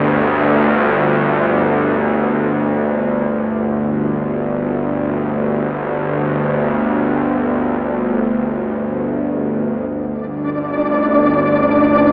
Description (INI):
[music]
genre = dark ambient drone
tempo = free time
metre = none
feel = none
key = unclear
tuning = A4 = 440 Hz
[part]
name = bowed-like drone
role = drone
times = 0.0-12.1 s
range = G1 to D2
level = -15 LUFS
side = equal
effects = built-in reverb
[part]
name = flickering grainy texture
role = texture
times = 10.5-12.1 s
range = D4 to D5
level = -14 LUFS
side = equal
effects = built-in reverb
[sound]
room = wet cathedral reverb, RT60 5.6 s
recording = cassette tape, AM radio sound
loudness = -14 LUFS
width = side -30 dB against mid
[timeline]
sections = 0.0-9.9 A section; 9.9-12.1 A section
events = none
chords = 0.0 G5